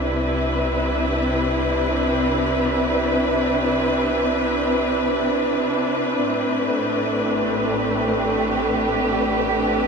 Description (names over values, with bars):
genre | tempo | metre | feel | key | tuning
ambient | free time | none | none | C major | A4 = 439 Hz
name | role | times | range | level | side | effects
rich studio string section | sustained chords | 0.0-9.9 s | A2 to B4 | -19 LUFS | equal | none
round analog bass | bass | 0.0-9.9 s | A1 to C2 | -31 LUFS | equal | none
room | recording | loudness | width
wet lush hall reverb, RT60 2.6 s | none | -18 LUFS | side -5 dB against mid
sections
0.0-9.9 A section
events
fade-out on analog synth bass 0.0-9.9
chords
0.0 Cmaj7; 6.2 Am11